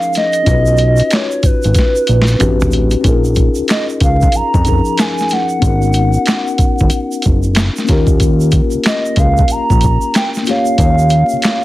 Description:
R&B, neo-soul; 93 BPM; 4/4; swing 63% on 16ths; A4 = 441 Hz
hollow clarinet-like synth lead; melody; 0.0-11.6 s; B4 to A#5; -16 LUFS; right 1 dB; chorus, slapback echo, plate reverb
mellow tine electric piano; accompaniment; 0.0-11.6 s; E#3 to C#5; -19 LUFS; left 4 dB; medium stereo tremolo, plate reverb
tube shaker and finger snaps; percussion; 0.0-11.6 s; -28 LUFS; right 6 dB
boom bap sampler-style drum kit; drums; 0.2-11.6 s; handclaps, hi-hat, kick drum, snare drum, toms; -14 LUFS; equal
fat analog bass; bass; 0.5-11.4 s; F#1 to E#2; -13 LUFS; equal
light reverb; dense, heavily limited modern master, vinyl crackle; -10 LUFS; side -17 dB against mid
0.0-3.0 A section; 3.0-11.6 B section
drum fill 1.8-3.0
0.5 Bmaj9; 2.4 Am11; 3.0 A#m7; 5.6 G#m9; 7.9 D#9

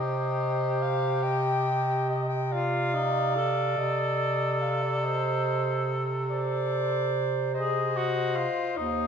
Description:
classical, lyrical piece for single-reed quartet; 48 BPM (dotted quarters); 12/8; rubato; C minor; A4 = 440 Hz
dark soprano saxophone; melody; 0.0-9.1 s; C5 to G5; -31 LUFS; left 4 dB
warm clarinet; second line; 0.0-9.1 s; C5 to Eb5; -32 LUFS; right 6 dB
warm tenor saxophone; accompaniment; 0.0-9.1 s; Eb4 to A4; -31 LUFS; left 2 dB
bright bass clarinet; bass; 0.0-9.1 s; Eb2 to C3; -29 LUFS; right 2 dB
wet recital hall reverb, RT60 1.4 s; dark, warm production; -25 LUFS; side -7 dB against mid
0.0-9.1 A section
0.0 Cm; 3.8 Cm6

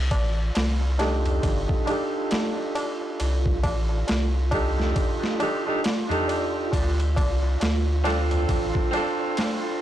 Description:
trip hop; 68 BPM; 4/4; swing 59% on 16ths; C dorian; A4 = 440 Hz
soft dub sub bass; bass; 0.0-8.7 s; G1 to D2; -24 LUFS; equal; tube saturation
wind-like tuned noise texture; texture; 0.0-9.8 s; F4; -34 LUFS; right 6 dB; built-in reverb
boom bap sampler-style drum kit; drums; 0.1-9.6 s; kick drum, ride cymbal, snare drum; -27 LUFS; equal; overdrive
tabla; percussion; 0.1-9.8 s; -33 LUFS; left 2 dB
harpsichord; accompaniment; 1.0-9.8 s; C4 to A4; -27 LUFS; right 1 dB; tremolo, low-pass filter, tape echo
little or no reverb; blown-out, overdriven recording, vinyl crackle, overdrive; -22 LUFS; side -12 dB against mid
0.0-9.8 A section
filter sweep on harpsichord 0.0-9.8
0.0 Cm69; 6.7 Dm7

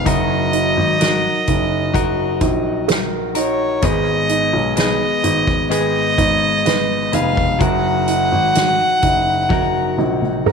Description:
pop ballad; 64 BPM; 4/4; straight; Eb minor; A4 = 440 Hz
warm violin; melody; 0.0-10.5 s; Db5 to Gb5; -19 LUFS; equal
felt-muted upright piano; accompaniment; 0.0-10.5 s; Gb3 to Bb5; -22 LUFS; right 13 dB
direct-recorded clean electric guitar; arpeggios; 0.0-10.5 s; Ab2 to Cb5; -22 LUFS; left 12 dB; slapback echo
dark baby grand piano; bass; 0.0-10.5 s; F1 to Cb2; -22 LUFS; left 2 dB
soft-mallet drum kit; drums; 0.1-10.5 s; hi-hat, kick drum, snare drum, toms; -22 LUFS; equal
moderate echo chamber reverb, RT60 2.1 s; 1960s-style stereo with parts hard left and right; -14 LUFS; side -5 dB against mid
0.0-10.5 A section
drum fill 9.5-10.5; felt piano fill 10.0-10.5
0.1 Ebm/Gb; 3.8 Abm; 7.6 Ebm/Gb

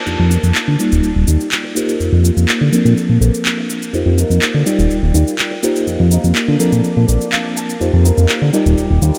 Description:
filtered disco house; 124 BPM; 4/4; straight; F mixolydian; A4 = 440 Hz
reed electric piano; accompaniment; 0.0-9.2 s; F3 to A5; -21 LUFS; equal; fast tremolo, phaser, vintage 12-bit sampler grit, low-pass filter
rich chamber string section; sustained chords; 0.0-9.2 s; Bb3 to D6; -28 LUFS; equal; low-pass filter
fat analog bass; bass; 0.1-9.1 s; Eb1 to D3; -15 LUFS; equal; low-pass filter
electronic shaker and handclaps; drums; 0.1-9.2 s; -23 LUFS; equal
electric guitar through a small old amp; riff; 0.3-9.2 s; Eb4 to A5; -25 LUFS; equal; analog chorus, low-pass filter
light reverb, digital ambience; -14 LUFS; mono
0.1-9.2 A section
filter sweep 0.1-9.2; clean electric guitar fill 6.8-7.8
0.1 F7sus4; 0.8 Ebmaj7; 1.8 F7sus4; 2.7 Bbmaj7; 3.9 F7sus4; 4.7 Ebmaj7; 5.6 F7sus4; 6.6 Bbmaj7; 7.8 F7sus4; 8.5 Ebmaj7

